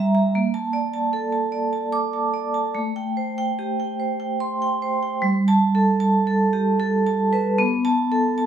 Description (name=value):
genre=classical, contemporary piece for solo vibraphone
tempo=76 BPM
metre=3/4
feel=rubato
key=unclear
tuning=A4 = 441 Hz
part: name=vibraphone with medium hard mallets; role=solo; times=0.0-8.5 s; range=G3 to D6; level=-19 LUFS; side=right 2 dB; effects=none
room=light reverb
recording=studio reverb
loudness=-19 LUFS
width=side -9 dB against mid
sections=0.0-5.2 A section; 5.2-8.5 B section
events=none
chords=0.4 Bbmaj7; 2.8 Am7; 5.2 Gsus2; 7.6 B7(no3)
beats=| 0.35 1.14 1.94 | 2.76 3.59 4.41 | 5.22 6.01 6.80 | 7.59 8.37